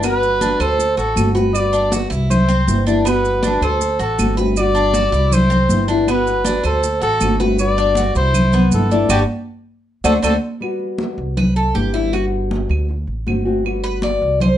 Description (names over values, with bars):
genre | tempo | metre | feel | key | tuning
latin, Cuban son and guajira | 159 BPM | 4/4 | straight | G major | A4 = 440 Hz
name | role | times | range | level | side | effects
trumpet with bucket mute | melody | 0.0-10.3 s | G4 to D5 | -19 LUFS | equal | none
nylon-string guitar | accompaniment | 0.0-14.5 s | D3 to F#4 | -22 LUFS | left 2 dB | none
Cuban tres | arpeggios | 0.0-14.6 s | B3 to D5 | -21 LUFS | equal | none
upright bass | bass | 0.0-14.6 s | G1 to D2 | -20 LUFS | equal | none
claves | percussion | 0.0-14.6 s | none | -29 LUFS | right 8 dB | none
congas | percussion | 0.0-14.6 s | none | -21 LUFS | equal | none
maracas | percussion | 0.0-10.3 s | none | -31 LUFS | right 8 dB | none
room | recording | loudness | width
moderate studio reverb, RT60 0.6 s | nothing above 10.7 kHz | -14 LUFS | side -11 dB against mid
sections
0.0-10.6 A section; 10.6-14.6 B section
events
band accent 9.1-10.6; Cuban tres solo 10.6-14.6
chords
0.0 Gmaj7; 0.8 D7; 1.5 Gmaj7; 2.3 Cmaj7; 3.1 Gmaj7; 3.8 D7; 4.6 Gmaj7; 5.3 Cmaj7; 6.1 Gmaj7; 6.8 D7; 7.6 Gmaj7; 8.3 Cmaj7; 9.1 Gmaj7; 9.9 D7; 10.6 Gmaj7; 11.4 Cmaj7; 12.1 Gmaj7; 12.9 D7; 13.7 Gmaj7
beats
| 0.04 0.42 0.79 1.17 | 1.55 1.93 2.30 2.68 | 3.06 3.43 3.81 4.19 | 4.57 4.94 5.32 5.70 | 6.08 6.45 6.83 7.21 | 7.59 7.96 8.34 8.72 | 9.10 9.48 9.86 10.23 | 10.61 10.99 11.37 11.75 | 12.13 12.51 12.89 13.27 | 13.65 14.03 14.41